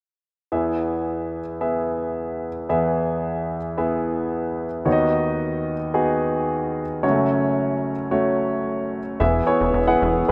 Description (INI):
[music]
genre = pop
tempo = 111 BPM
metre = 4/4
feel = straight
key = unclear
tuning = A4 = 440 Hz
[part]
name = clear concert grand piano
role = accompaniment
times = 0.5-10.3 s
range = F#1 to F#5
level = -23 LUFS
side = equal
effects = none
[part]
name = plucky analog bass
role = bass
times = 9.2-10.3 s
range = E1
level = -25 LUFS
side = equal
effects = none
[sound]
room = moderate lush hall reverb, RT60 2.8 s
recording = rough home demo mix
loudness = -23 LUFS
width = mono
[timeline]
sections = 0.5-9.2 A section; 9.2-10.3 B section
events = none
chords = 0.5 E; 4.9 B/D#; 7.0 F#m; 9.2 E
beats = | 0.52 1.07 1.61 2.15 | 2.69 3.23 3.78 4.32 | 4.86 5.41 5.95 6.49 | 7.03 7.57 8.12 8.66 | 9.20 9.74 10.29